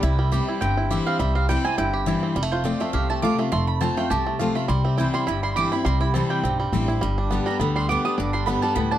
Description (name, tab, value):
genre	bluegrass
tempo	206 BPM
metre	4/4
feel	swing 55% on 8ths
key	C major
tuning	A4 = 440 Hz
part	bluegrass banjo	melody	0.0-9.0 s	G3 to G4	-26 LUFS	right 4 dB	none
part	picked steel-string acoustic guitar	accompaniment	0.0-9.0 s	F2 to G4	-25 LUFS	left 4 dB	none
part	mandolin	stabs	0.0-9.0 s	C5 to Eb6	-27 LUFS	right 4 dB	none
part	upright bass	bass	0.0-9.0 s	F1 to D2	-25 LUFS	equal	none
room	moderate studio ambience, RT60 0.5 s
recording	dark, warm production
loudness	-20 LUFS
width	side -12 dB against mid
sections	0.0-2.4 A section; 2.4-9.0 A section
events	mandolin solo 0.0-9.0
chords	0.0 C; 2.4 F; 4.7 C; 7.0 G